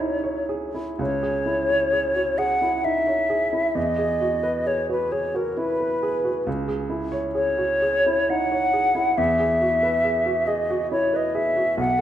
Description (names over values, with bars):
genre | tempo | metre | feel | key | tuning
classical, impressionist duo for flute and grand piano | 58-71 BPM | 3/4 | rubato | C# minor | A4 = 440 Hz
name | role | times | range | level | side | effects
hollow concert flute | melody | 0.0-12.0 s | A#4 to F#5 | -21 LUFS | left 1 dB | none
warm baby grand piano | accompaniment | 0.0-12.0 s | B1 to C#5 | -26 LUFS | right 2 dB | none
room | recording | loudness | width
wet recital hall reverb, RT60 1.8 s | dark, warm production | -20 LUFS | side -11 dB against mid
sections
0.0-1.0 A section; 1.0-12.0 A section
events
none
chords
0.0 C#madd9; 3.8 Emaj9; 6.5 C#madd9; 9.2 Eadd9